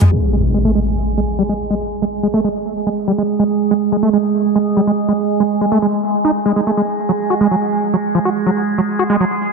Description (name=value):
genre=trance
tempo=142 BPM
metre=4/4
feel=straight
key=unclear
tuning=A4 = 439 Hz
part: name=overtone-sweeping drone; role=sustained chords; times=0.0-9.5 s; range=Ab3 to Ab4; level=-17 LUFS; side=right 3 dB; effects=chorus, built-in reverb
part: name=overdriven acid bass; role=riff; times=0.0-9.2 s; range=F3 to Gb4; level=-18 LUFS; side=moving between left 2 dB and right 5 dB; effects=distortion, auto-pan, digital delay
part: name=impact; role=sound effects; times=0.1-1.8 s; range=none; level=-19 LUFS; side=left 1 dB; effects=none
room=moderate lush hall reverb, RT60 2.4 s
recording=low-pass filter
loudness=-14 LUFS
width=side -4 dB against mid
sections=0.1-9.5 A section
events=impact 0.1-1.8; filter sweep 0.1-9.5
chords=0.1 Ab5; 6.9 N.C.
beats=| 0.12 0.54 0.96 1.39 | 1.81 2.23 2.65 3.08 | 3.50 3.92 4.34 4.77 | 5.19 5.61 6.03 6.46 | 6.88 7.30 7.72 8.15 | 8.57 8.99 9.41